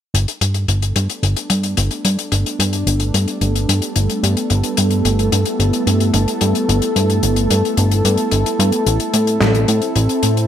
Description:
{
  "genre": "synthwave",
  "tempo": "110 BPM",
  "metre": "4/4",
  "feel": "straight",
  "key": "G major",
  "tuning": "A4 = 440 Hz",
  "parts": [
    { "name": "lush unison pad", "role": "sustained chords", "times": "1.0-10.5 s", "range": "G3 to A4", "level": "-19 LUFS", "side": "equal", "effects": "chorus" },
    { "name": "fat analog bass", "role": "bass", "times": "0.1-10.5 s", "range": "G1 to A2", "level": "-16 LUFS", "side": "equal", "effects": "none" },
    { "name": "modern studio drum kit", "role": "drums", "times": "0.1-10.5 s", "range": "hi-hat, snare drum", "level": "-21 LUFS", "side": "left 5 dB", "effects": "gated reverb" }
  ],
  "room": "light reverb",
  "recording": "bright 1980s-style digital production",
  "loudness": "-14 LUFS",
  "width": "side -10 dB against mid",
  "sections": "0.1-10.5 A section",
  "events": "filter sweep on analog synth bass 0.1-10.5; filter sweep on analog synth pad 0.1-10.5",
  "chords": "0.1 Gadd9; 8.9 Am"
}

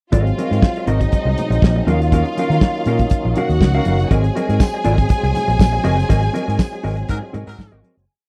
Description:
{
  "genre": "disco",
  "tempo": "121 BPM",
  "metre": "4/4",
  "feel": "straight",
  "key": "unclear",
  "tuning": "A4 = 440 Hz",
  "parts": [
    { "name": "warm studio string section", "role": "second line", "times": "0.1-8.0 s", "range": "Eb4 to Ab5", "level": "-26 LUFS", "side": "equal", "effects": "none" },
    { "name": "mellow electric guitar", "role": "accompaniment", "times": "0.1-8.0 s", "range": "C4 to F5", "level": "-26 LUFS", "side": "equal", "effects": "none" },
    { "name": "tonewheel organ", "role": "sustained chords", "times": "0.1-8.1 s", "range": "Eb3 to Eb4", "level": "-29 LUFS", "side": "equal", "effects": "overdrive, chorus vibrato, slow rotary speaker" },
    { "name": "fingered electric bass", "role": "bass", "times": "0.1-8.1 s", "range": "Gb1 to Eb3", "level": "-20 LUFS", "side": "equal", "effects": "none" },
    { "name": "damped 70s drum kit", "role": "drums", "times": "0.1-8.1 s", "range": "hi-hat, kick drum, snare drum", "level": "-17 LUFS", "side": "equal", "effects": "none" },
    { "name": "congas", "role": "percussion", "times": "0.1-8.0 s", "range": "none", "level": "-29 LUFS", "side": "equal", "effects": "none" },
    { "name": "tambourine", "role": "percussion", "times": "4.6-7.7 s", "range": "none", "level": "-41 LUFS", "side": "equal", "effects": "none" },
    { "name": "warm horn section", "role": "stabs", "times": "7.1-7.8 s", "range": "Gb3 to Bb4", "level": "-35 LUFS", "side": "equal", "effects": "none" }
  ],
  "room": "little or no reverb",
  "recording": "dry, close 1970s-style studio recording",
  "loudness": "-17 LUFS",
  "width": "mono",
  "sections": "0.1-8.1 pre-chorus",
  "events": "fade-out 6.1-8.1; band accent 6.1-8.1",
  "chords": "0.1 Ab9; 1.9 Ebm9; 4.1 Ab9"
}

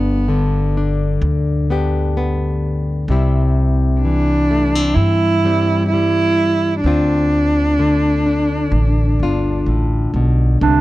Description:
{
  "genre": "acoustic folk duo or small band",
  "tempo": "64 BPM",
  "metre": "4/4",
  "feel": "straight",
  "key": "D dorian",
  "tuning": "A4 = 442 Hz",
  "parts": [
    { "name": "dark cello", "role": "melody", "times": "0.0-9.6 s", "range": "B3 to E4", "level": "-17 LUFS", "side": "right 1 dB", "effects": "none" },
    { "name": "nylon-string guitar", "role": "accompaniment", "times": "0.0-10.8 s", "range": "D2 to G4", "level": "-19 LUFS", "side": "left 3 dB", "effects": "none" },
    { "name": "upright bass", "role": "bass", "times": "0.0-10.8 s", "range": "G1 to G2", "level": "-18 LUFS", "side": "equal", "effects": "none" },
    { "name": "warm clarinet", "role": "second line", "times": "10.6-10.8 s", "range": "D4", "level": "-13 LUFS", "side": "right 6 dB", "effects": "none" }
  ],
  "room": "little or no reverb",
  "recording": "dry, close 1970s-style studio recording",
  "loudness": "-14 LUFS",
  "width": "side -17 dB against mid",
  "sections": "0.0-10.6 A section",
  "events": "none",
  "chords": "0.0 G; 3.1 C; 6.9 Dm7"
}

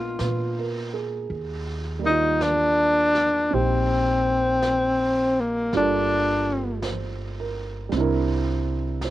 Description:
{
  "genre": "jazz ballad",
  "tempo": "54 BPM",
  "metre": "4/4",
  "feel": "swing 66% on 8ths",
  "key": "unclear",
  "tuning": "A4 = 441 Hz",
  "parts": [
    { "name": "breathy tenor saxophone", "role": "melody", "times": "0.0-6.8 s", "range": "Bb3 to F4", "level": "-21 LUFS", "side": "left 1 dB", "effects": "cassette tape" },
    { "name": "warm baby grand piano", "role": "accompaniment", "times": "0.0-9.1 s", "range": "Eb3 to D5", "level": "-28 LUFS", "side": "right 7 dB", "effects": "cassette tape" },
    { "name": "upright bass", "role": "bass", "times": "0.0-9.1 s", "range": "G1 to Bb2", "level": "-29 LUFS", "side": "equal", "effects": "none" },
    { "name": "jazz brush drum kit", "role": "drums", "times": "0.2-9.1 s", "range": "brushed snare drum, hi-hat, snare drum", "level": "-37 LUFS", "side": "equal", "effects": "cassette tape" }
  ],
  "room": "moderate booth ambience, RT60 0.2 s",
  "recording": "home recording on cassette",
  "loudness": "-21 LUFS",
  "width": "side -14 dB against mid",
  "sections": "0.0-9.1 A section",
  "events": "none",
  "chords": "0.0 Bb7b9; 1.3 Ebmaj7; 5.7 Gm9; 7.9 C9"
}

